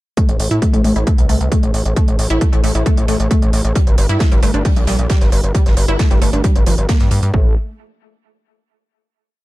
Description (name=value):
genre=driving peak-time techno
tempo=134 BPM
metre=4/4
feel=straight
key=A phrygian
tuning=A4 = 438 Hz
part: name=wide unison pluck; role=riff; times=0.2-7.5 s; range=F3 to E4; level=-21 LUFS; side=equal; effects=cassette tape, sidechain pumping, ping-pong delay
part: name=electronic hi-hat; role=drums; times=0.2-7.3 s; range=none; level=-28 LUFS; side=right 3 dB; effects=none
part: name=electronic kick drum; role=drums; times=0.2-7.4 s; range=none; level=-14 LUFS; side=equal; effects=none
part: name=gritty driven synth bass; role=bass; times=0.3-7.5 s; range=G1 to A2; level=-17 LUFS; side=equal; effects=distortion, tube saturation, sidechain pumping
part: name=loose indie drum kit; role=drums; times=3.8-7.3 s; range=hi-hat, snare drum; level=-30 LUFS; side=right 2 dB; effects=high-pass filter on hats, high-pass filter on snare, high-pass filter on room
room=light reverb, small room ambience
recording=dark, warm production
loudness=-12 LUFS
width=side -18 dB against mid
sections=0.2-7.3 groove; 7.3-9.1 final chord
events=none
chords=0.2 Am; 3.8 Gm; 7.3 N.C.